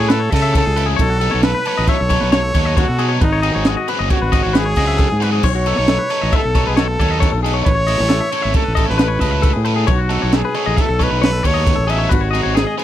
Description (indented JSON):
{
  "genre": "math rock and midwest emo",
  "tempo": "135 BPM",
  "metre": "5/4",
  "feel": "straight",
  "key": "unclear",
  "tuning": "A4 = 441 Hz",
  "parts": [
    { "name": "clear trumpet", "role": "melody", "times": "0.0-12.8 s", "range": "D#4 to E5", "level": "-21 LUFS", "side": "right 1 dB", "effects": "tape echo" },
    { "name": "twangy electric guitar", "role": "arpeggios", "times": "0.0-12.8 s", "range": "F#4 to E5", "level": "-23 LUFS", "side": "left 11 dB", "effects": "none" },
    { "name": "biting overdriven guitar", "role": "riff", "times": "0.0-12.8 s", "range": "F#3 to A4", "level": "-23 LUFS", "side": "right 2 dB", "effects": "none" },
    { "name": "fuzz fingered electric bass", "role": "bass", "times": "0.0-12.6 s", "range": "F#1 to C#3", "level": "-19 LUFS", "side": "equal", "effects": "overdrive" },
    { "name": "crisp fusion drum kit", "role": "drums", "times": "0.1-12.8 s", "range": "crash cymbal, kick drum, ride cymbal, snare drum", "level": "-18 LUFS", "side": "equal", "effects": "none" }
  ],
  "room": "little or no reverb",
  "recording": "none",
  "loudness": "-14 LUFS",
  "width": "side -12 dB against mid",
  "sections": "0.0-12.8 A section",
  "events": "none",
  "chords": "0.0 Amaj9; 1.0 B7sus2; 3.2 G#7sus4; 5.4 B7sus2; 7.7 Amaj9; 9.9 B7sus2; 12.1 G#7sus4"
}